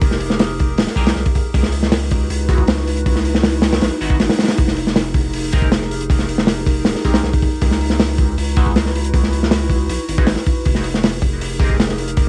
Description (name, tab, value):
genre	drum and bass, jungle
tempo	158 BPM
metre	4/4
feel	straight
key	unclear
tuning	A4 = 440 Hz
part	warbly tape-like pad	sustained chords	0.0-12.3 s	Eb4 to Cb5	-27 LUFS	equal	chorus, built-in reverb, cassette tape
part	saturated sub bass	bass	0.0-12.3 s	Eb1 to Db2	-24 LUFS	equal	none
part	crunchy breakbeat drum kit	drums	0.0-12.3 s	hi-hat, kick drum, snare drum	-18 LUFS	equal	cassette tape
part	band-passed chord stab	stabs	1.0-11.8 s	Ab3 to Bb4	-31 LUFS	equal	phaser, cassette tape, dub echo
room	little or no reverb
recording	home recording on cassette, vinyl crackle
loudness	-17 LUFS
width	mono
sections	0.0-12.3 A section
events	none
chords	0.0 Fm11; 1.5 Dbm11; 4.6 Fm11; 7.6 Dbm11; 10.7 Fm11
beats	| 0.02 0.40 0.78 1.16 | 1.54 1.92 2.30 2.68 | 3.06 3.44 3.82 4.20 | 4.58 4.96 5.34 5.72 | 6.10 6.48 6.86 7.24 | 7.62 8.00 8.38 8.76 | 9.13 9.51 9.89 10.27 | 10.65 11.03 11.41 11.79 | 12.17